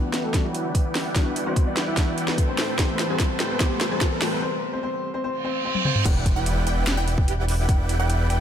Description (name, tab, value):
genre	future bass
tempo	147 BPM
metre	4/4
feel	half-time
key	E minor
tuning	A4 = 439 Hz
part	warm grand piano	melody	0.0-6.0 s	F#3 to E5	-30 LUFS	left 2 dB	sidechain pumping, low-pass filter, tape echo
part	glassy digital keys	accompaniment	0.0-6.1 s	E3 to G4	-31 LUFS	left 2 dB	chorus, sidechain pumping, ping-pong delay
part	shimmering ambient pad	sustained chords	0.0-4.4 s	C3 to C5	-40 LUFS	right 1 dB	none
part	dense compressed supersaw	riff	0.0-8.4 s	A3 to A5	-29 LUFS	right 1 dB	sidechain pumping, low-pass filter
part	riser, reverse cymbal and impact	sound effects	2.5-7.7 s	none	-33 LUFS	right 2 dB	none
part	trap drum kit	drums	0.1-8.4 s	crash cymbal, hi-hat, snare drum, toms	-27 LUFS	equal	studio reverb
part	electronic kick drum	drums	0.3-7.8 s	none	-22 LUFS	equal	studio reverb
part	wide unison pluck	arpeggios	6.1-8.4 s	G4 to G5	-32 LUFS	moving between left 3 dB and right 6 dB	auto-pan, sidechain pumping, ping-pong delay
part	fat analog bass	bass	6.1-8.4 s	E1	-23 LUFS	equal	sidechain pumping
room	light reverb, digital ambience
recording	none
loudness	-21 LUFS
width	side -9 dB against mid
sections	0.0-6.1 A section; 6.1-8.4 B section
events	build-up 0.0-6.1; drum fill 0.0-4.4, 5.7-6.1; filter sweep on supersaw synth 0.0-6.1; filter sweep on grand piano 0.0-6.1; break 4.4-6.1; reverse cymbal 5.4-6.1; drop 6.1-8.4; impact 6.1-7.7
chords	0.0 Em9; 2.6 Am9; 6.1 Em9